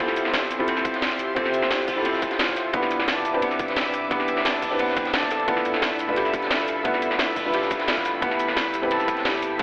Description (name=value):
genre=liquid drum and bass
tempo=175 BPM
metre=4/4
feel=straight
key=D dorian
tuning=A4 = 440 Hz
part: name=felt-muted upright piano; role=accompaniment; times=0.0-9.6 s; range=A3 to E5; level=-26 LUFS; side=equal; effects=dub echo
part: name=airy breathy pad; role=sustained chords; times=0.0-9.6 s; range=G4 to D6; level=-29 LUFS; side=equal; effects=chorus
part: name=Celtic harp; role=arpeggios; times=0.0-9.6 s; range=B3 to A4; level=-28 LUFS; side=equal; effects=digital delay
part: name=sub bass with octave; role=bass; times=0.0-9.6 s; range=D1 to E2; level=-48 LUFS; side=equal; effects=none
part: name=crunchy breakbeat drum kit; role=drums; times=0.0-9.6 s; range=hi-hat, ride cymbal, snare drum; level=-29 LUFS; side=equal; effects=high-pass filter on cymbals, studio reverb, high-pass filter on hats, high-pass filter on snare, high-pass filter on room
part: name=drum and bass drum kit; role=drums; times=0.1-9.6 s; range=cabasa, hi-hat, snare drum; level=-26 LUFS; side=equal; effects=overdrive, studio reverb
part: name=electronic kick drum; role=drums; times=0.9-9.6 s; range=none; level=-28 LUFS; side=equal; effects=overdrive, studio reverb
room=moderate lush hall reverb, RT60 1.9 s, small room ambience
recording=telephone sound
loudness=-20 LUFS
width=side -24 dB against mid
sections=0.0-9.6 A section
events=drop 0.0-9.6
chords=0.0 Dm11; 2.7 Cmaj9; 5.3 G13; 8.2 Am9